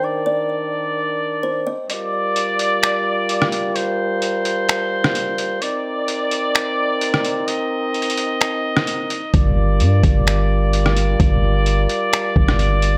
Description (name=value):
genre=hip hop, atmospheric cloud-rap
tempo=129 BPM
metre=4/4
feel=half-time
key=G minor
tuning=A4 = 440 Hz
part: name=kalimba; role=melody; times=0.0-1.9 s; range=C5 to Eb5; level=-27 LUFS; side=equal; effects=digital delay
part: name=dark brass ensemble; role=sustained chords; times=0.0-13.0 s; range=Eb3 to Eb5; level=-22 LUFS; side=equal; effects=sidechain pumping
part: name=trip hop sampler-style drum kit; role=drums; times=1.9-12.9 s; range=finger snaps, hi-hat, kick drum, rim click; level=-22 LUFS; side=equal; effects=overdrive
part: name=long sustained 808-style bass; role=bass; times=9.3-13.0 s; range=G1 to G2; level=-19 LUFS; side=equal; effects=none
room=light reverb, digital ambience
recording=none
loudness=-19 LUFS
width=mono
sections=0.0-1.9 A section; 1.9-13.0 B section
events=kick muted 1.9-9.3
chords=0.0 Cm9 (rootless); 1.9 Gm7; 5.6 Cm9; 9.3 Gm7